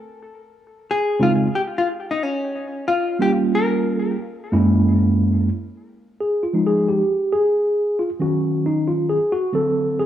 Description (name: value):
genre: hip hop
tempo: 90 BPM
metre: 4/4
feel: swing 65% on 16ths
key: F minor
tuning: A4 = 439 Hz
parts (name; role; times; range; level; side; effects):
- hollow-body jazz guitar; melody; 0.9-4.2 s; Db4 to Bb4; -22 LUFS; left 3 dB; cassette tape, analog delay
- mellow tine electric piano; accompaniment; 1.2-10.1 s; Gb2 to A4; -17 LUFS; right 1 dB; medium stereo tremolo, cassette tape
room: moderate spring reverb, RT60 1.9 s, digital ambience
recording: home recording on cassette, small room ambience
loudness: -18 LUFS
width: side -11 dB against mid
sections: 0.0-5.5 A section; 5.5-10.1 B section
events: tine electric piano solo 5.5-10.1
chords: 0.2 Dbmaj9; 2.9 Gm7b5; 4.2 Gb9; 5.5 Fm7; 8.2 Ebm7; 9.5 D7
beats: | 0.20 0.87 1.53 2.20 | 2.87 3.53 4.20 4.87 | 5.53 6.20 6.87 7.53 | 8.20 8.87 9.53